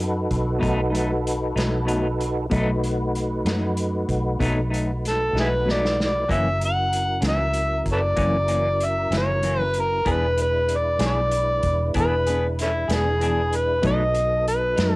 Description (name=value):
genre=slow blues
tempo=64 BPM (dotted quarters)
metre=12/8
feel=straight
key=B mixolydian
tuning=A4 = 440 Hz
part: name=mellow tonewheel organ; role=sustained chords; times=0.0-15.0 s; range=C#3 to B4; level=-28 LUFS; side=equal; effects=slow rotary speaker, chorus vibrato, cassette tape, plate reverb
part: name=vintage muted fingered electric bass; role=bass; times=0.0-15.0 s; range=E1 to F#2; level=-25 LUFS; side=equal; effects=none
part: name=vintage drum kit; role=drums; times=0.0-14.9 s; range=hi-hat, kick drum, snare drum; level=-29 LUFS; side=equal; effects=cassette tape
part: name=semi-hollow electric guitar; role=accompaniment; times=0.6-15.0 s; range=F#2 to G#4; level=-27 LUFS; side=left 1 dB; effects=harmonic tremolo, cassette tape, plate reverb
part: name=overdriven harmonica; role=melody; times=5.1-15.0 s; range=A3 to F#5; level=-22 LUFS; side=equal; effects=plate reverb
room=light reverb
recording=home recording on cassette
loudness=-20 LUFS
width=side -22 dB against mid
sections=0.0-15.0 A section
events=drum fill 5.3-6.3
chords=0.0 B7; 6.3 F#7; 10.1 E7; 13.8 B7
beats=0.62 1.56 | 2.51 3.45 4.40 5.34 | 6.29 7.23 8.17 9.12 | 10.06 11.01 11.95 12.89 | 13.84 14.78